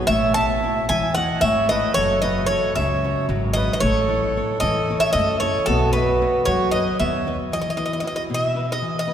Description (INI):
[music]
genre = greek folk, Greek bouzouki band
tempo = 227 BPM (eighths)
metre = 7/8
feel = straight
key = E major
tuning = A4 = 440 Hz
[part]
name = nylon-string guitar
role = accompaniment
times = 0.0-9.1 s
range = B2 to D#5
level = -26 LUFS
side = left 1 dB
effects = none
[part]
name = Greek bouzouki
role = melody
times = 0.1-9.1 s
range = A4 to A5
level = -21 LUFS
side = equal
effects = none
[part]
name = accordion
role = second line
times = 0.1-7.4 s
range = F#4 to E5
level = -27 LUFS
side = right 2 dB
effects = none
[part]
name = upright bass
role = bass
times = 0.1-7.4 s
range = F#1 to F#2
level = -26 LUFS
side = equal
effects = none
[sound]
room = wet cathedral reverb, RT60 4.6 s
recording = recorded in a church or concert hall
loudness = -18 LUFS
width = side -9 dB against mid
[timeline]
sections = 0.0-7.5 A section; 7.5-9.1 B section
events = none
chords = 0.1 A; 2.0 F#m; 3.8 A; 5.7 Badd9; 7.5 Esus2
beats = | 0.09 0.36 0.62 0.89 1.16 1.43 1.70 | 1.96 2.23 2.50 2.76 3.03 3.29 3.56 | 3.83 4.09 4.36 4.62 4.89 5.15 5.42 | 5.68 5.94 6.21 6.47 6.73 7.00 7.26 | 7.52 7.79 8.05 8.31 8.57 8.84 9.10